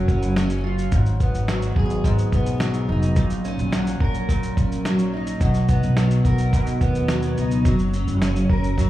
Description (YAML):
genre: acoustic pop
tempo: 107 BPM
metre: 4/4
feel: straight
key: F# major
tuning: A4 = 440 Hz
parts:
  - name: picked steel-string acoustic guitar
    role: accompaniment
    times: 0.0-8.9 s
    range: G#2 to A#4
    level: -22 LUFS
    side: equal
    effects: double-tracked left and right, slapback echo
  - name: upright bass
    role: bass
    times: 0.0-8.9 s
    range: E#1 to D#2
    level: -23 LUFS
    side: equal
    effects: none
  - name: dusty soul sampler-style drum kit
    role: drums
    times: 0.1-8.9 s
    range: kick drum, shaker, snare drum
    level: -23 LUFS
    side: equal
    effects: none
room: studio ambience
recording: live gig heard through the venue's PA, club reverb, vinyl crackle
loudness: -18 LUFS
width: side -14 dB against mid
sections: 0.0-8.9 A section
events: none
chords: 0.0 F#maj7; 0.9 G#m7; 3.2 D#m7/A#; 5.4 Bmaj7; 7.7 F#